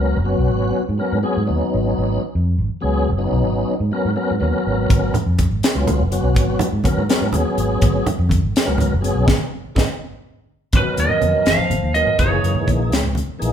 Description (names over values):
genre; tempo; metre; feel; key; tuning
electric jazz fusion; 82 BPM (dotted quarters); 6/8; straight; G# dorian; A4 = 441 Hz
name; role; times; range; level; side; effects
tonewheel organ; accompaniment; 0.0-13.5 s; E3 to A#4; -22 LUFS; left 2 dB; slow rotary speaker, overdrive, chorus vibrato
fingered electric bass; bass; 0.0-13.5 s; F#1 to G#2; -20 LUFS; equal; none
crisp fusion drum kit; drums; 4.9-13.5 s; hi-hat, kick drum, snare drum; -20 LUFS; equal; none
congas; percussion; 4.9-13.3 s; none; -24 LUFS; right 1 dB; none
lightly driven lead guitar; melody; 10.8-12.7 s; B4 to E#5; -19 LUFS; right 3 dB; none
mellow bass clarinet; second line; 10.8-12.7 s; B2 to E#3; -26 LUFS; left 2 dB; none
room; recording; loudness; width
moderate large studio reverb, RT60 1.0 s; band playing live in one room; -16 LUFS; side -9 dB against mid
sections
0.0-10.7 A section; 10.7-13.5 B section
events
band accent 9.3-10.7; drum fill 10.0-10.7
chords
0.0 G#m11; 12.2 F#13